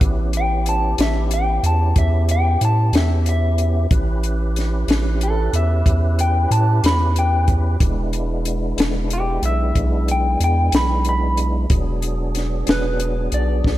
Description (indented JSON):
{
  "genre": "slow blues",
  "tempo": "62 BPM (dotted quarters)",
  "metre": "12/8",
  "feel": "straight",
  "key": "unclear",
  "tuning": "A4 = 440 Hz",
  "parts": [
    { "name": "tonewheel organ", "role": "sustained chords", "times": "0.0-13.8 s", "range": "F#3 to B4", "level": "-27 LUFS", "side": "equal", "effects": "overdrive, chorus vibrato, slow rotary speaker" },
    { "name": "round analog bass", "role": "bass", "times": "0.0-13.8 s", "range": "E1 to A2", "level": "-19 LUFS", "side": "equal", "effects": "none" },
    { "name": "compact cocktail drum kit", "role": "drums", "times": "0.0-13.8 s", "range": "hi-hat, kick drum, snare drum", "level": "-20 LUFS", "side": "equal", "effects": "none" },
    { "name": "electric guitar through a small old amp", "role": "melody", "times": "0.4-13.8 s", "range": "G4 to B5", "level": "-23 LUFS", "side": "left 1 dB", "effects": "slapback echo" }
  ],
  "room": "light reverb, studio reverb",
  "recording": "none",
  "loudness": "-16 LUFS",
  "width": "side -14 dB against mid",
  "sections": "0.0-13.8 A section",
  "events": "none",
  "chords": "0.0 A7; 7.8 E7",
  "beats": "| 0.01 0.99 1.96 2.94 | 3.91 4.88 5.86 6.83 | 7.80 8.78 9.75 10.73 | 11.70 12.67 13.64"
}